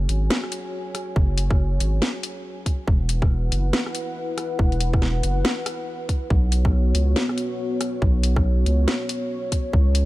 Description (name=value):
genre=deep dubstep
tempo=140 BPM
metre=4/4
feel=swing 61% on 16ths, half-time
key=unclear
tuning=A4 = 440 Hz
part: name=dark analog pad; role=sustained chords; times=0.0-10.1 s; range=B3 to G#5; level=-29 LUFS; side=left 1 dB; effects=chorus
part: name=saturated sub bass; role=bass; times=0.0-10.1 s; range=E1 to C#2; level=-20 LUFS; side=equal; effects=none
part: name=garage drum kit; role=drums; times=0.1-10.1 s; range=hi-hat, rim click, snare drum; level=-27 LUFS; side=left 1 dB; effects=small room reverb
part: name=electronic kick drum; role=drums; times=1.2-9.8 s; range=none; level=-20 LUFS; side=equal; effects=small room reverb
room=little or no reverb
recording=none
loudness=-20 LUFS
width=side -18 dB against mid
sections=0.0-10.1 A section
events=none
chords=0.0 F#5; 2.9 E5; 6.3 Bsus2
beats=0.30 0.73 | 1.16 1.59 2.02 2.45 | 2.88 3.31 3.73 4.16 | 4.59 5.02 5.45 5.88 | 6.30 6.73 7.16 7.59 | 8.02 8.45 8.88 9.30 | 9.73